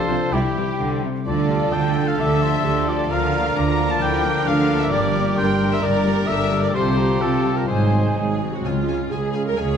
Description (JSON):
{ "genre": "cinematic", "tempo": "131 BPM", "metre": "4/4", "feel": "straight", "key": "unclear", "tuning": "A4 = 440 Hz", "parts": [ { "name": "warm studio violin section", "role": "melody", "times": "0.0-9.7 s", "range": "G4 to Bb5", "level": "-29 LUFS", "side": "left 4 dB", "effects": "none" }, { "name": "bright silver concert flute", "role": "second line", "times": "0.0-8.4 s", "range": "F5 to D6", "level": "-31 LUFS", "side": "left 1 dB", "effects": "none" }, { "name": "dark clarinet", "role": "second line", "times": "0.0-8.4 s", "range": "D4 to Bb4", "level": "-30 LUFS", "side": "left 2 dB", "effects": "none" }, { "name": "mellow oboe", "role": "second line", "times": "0.0-8.2 s", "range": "G4 to Bb5", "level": "-26 LUFS", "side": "equal", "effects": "none" }, { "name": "rich symphonic violin section", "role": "second line", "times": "0.0-9.8 s", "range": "E4 to Db5", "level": "-32 LUFS", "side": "left 3 dB", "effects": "none" }, { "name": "mellow French horn section", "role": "sustained chords", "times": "0.0-9.8 s", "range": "F3 to F4", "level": "-29 LUFS", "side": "left 3 dB", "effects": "none" }, { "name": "concert harp", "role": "arpeggios", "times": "0.0-9.8 s", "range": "G2 to F5", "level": "-27 LUFS", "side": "left 6 dB", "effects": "none" }, { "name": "bright trumpet", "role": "stabs", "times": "0.0-8.4 s", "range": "G4 to Bb4", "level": "-28 LUFS", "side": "right 1 dB", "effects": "none" }, { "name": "warm symphonic viola section", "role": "accompaniment", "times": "0.1-9.8 s", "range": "C3 to Bb4", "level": "-29 LUFS", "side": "right 2 dB", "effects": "none" }, { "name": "rich symphonic cello section", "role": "bass", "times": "0.1-9.8 s", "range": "Db2 to D3", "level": "-25 LUFS", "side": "right 4 dB", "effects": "none" }, { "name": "warm symphonic double bass section", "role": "bass", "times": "0.1-9.8 s", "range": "G1 to D2", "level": "-25 LUFS", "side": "right 4 dB", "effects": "none" } ], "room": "moderate scoring stage reverb, RT60 1.8 s", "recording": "none", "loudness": "-18 LUFS", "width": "side -7 dB against mid", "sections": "0.0-8.7 A section; 8.7-9.8 B section", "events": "none", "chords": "0.3 C; 1.3 Dm; 3.1 Bb/D; 4.9 Gm; 6.7 Csus4; 7.7 Ab7; 8.7 Db" }